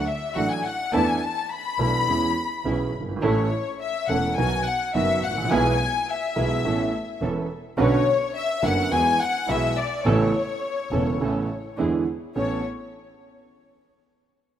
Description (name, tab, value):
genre	tango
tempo	105 BPM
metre	4/4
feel	rubato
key	A major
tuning	A4 = 440 Hz
part	warm studio violin section	second line	0.0-12.6 s	C#5 to B5	-25 LUFS	left 5 dB	none
part	warm concert grand piano	accompaniment	0.0-12.6 s	E1 to A4	-25 LUFS	right 3 dB	none
part	muted chamber string section	stabs	0.0-12.6 s	G#3 to B4	-32 LUFS	right 4 dB	none
part	warm double bass	bass	0.0-12.6 s	E1 to E2	-29 LUFS	equal	none
room	light reverb, small room ambience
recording	rough home demo mix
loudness	-21 LUFS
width	side -10 dB against mid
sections	0.0-12.4 A section; 12.4-14.6 B section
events	violin section solo 0.0-12.4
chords	0.0 D; 0.9 E7sus4; 2.1 E6; 3.2 A; 4.4 B; 5.5 E/B; 6.7 Aadd9; 7.8 Bmadd9; 8.9 Eadd9; 10.1 Aadd9; 11.8 E7; 12.4 Aadd9